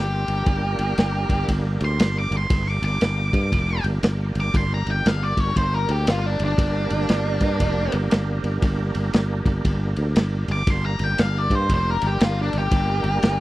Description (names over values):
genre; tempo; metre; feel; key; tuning
blues rock power trio and southern rock; 118 BPM; 4/4; swing 63% on 8ths; G minor; A4 = 442 Hz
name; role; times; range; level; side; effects
octave-fuzz lead guitar; melody; 0.0-13.4 s; D4 to D6; -26 LUFS; left 1 dB; distortion
overdriven tonewheel organ; sustained chords; 0.0-13.4 s; Bb3 to B4; -31 LUFS; right 4 dB; slow rotary speaker, chorus vibrato
sustaining fretless electric bass; bass; 0.0-13.4 s; F1 to G2; -23 LUFS; equal; none
vintage drum kit; drums; 0.3-13.4 s; kick drum, ride cymbal, snare drum; -23 LUFS; equal; none
room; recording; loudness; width
little or no reverb; dry, close 1970s-style studio recording; -19 LUFS; side -17 dB against mid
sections
0.0-13.4 A section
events
lead electric guitar solo 0.0-13.4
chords
0.0 Gm